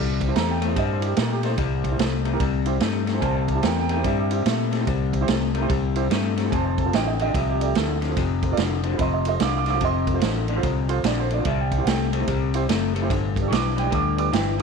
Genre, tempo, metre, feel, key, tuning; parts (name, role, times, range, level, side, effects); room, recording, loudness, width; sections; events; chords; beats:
electric blues shuffle; 146 BPM; 4/4; swing 63% on 8ths; C mixolydian; A4 = 445 Hz
electric guitar through a small old amp; riff; 0.0-14.6 s; F2 to A3; -26 LUFS; left 16 dB; lush chorus
fingered electric bass; bass; 0.0-14.6 s; F1 to Bb2; -25 LUFS; equal
dark grand piano; accompaniment; 0.2-14.6 s; D4 to D6; -27 LUFS; right 10 dB
vintage drum kit; drums; 0.2-14.6 s; kick drum, ride cymbal, snare drum; -27 LUFS; right 5 dB
light reverb, studio reverb; 1960s-style stereo with parts hard left and right; -20 LUFS; side -5 dB against mid
0.0-14.6 A section
0.0 C; 6.5 F; 11.5 C; 13.1 G
0.35 0.76 1.17 | 1.58 2.00 2.41 2.82 | 3.23 3.64 4.05 4.46 | 4.88 5.29 5.70 6.11 | 6.52 6.93 7.34 7.76 | 8.17 8.58 8.99 9.40 | 9.81 10.22 10.63 11.05 | 11.46 11.87 12.28 12.69 | 13.10 13.51 13.92 14.33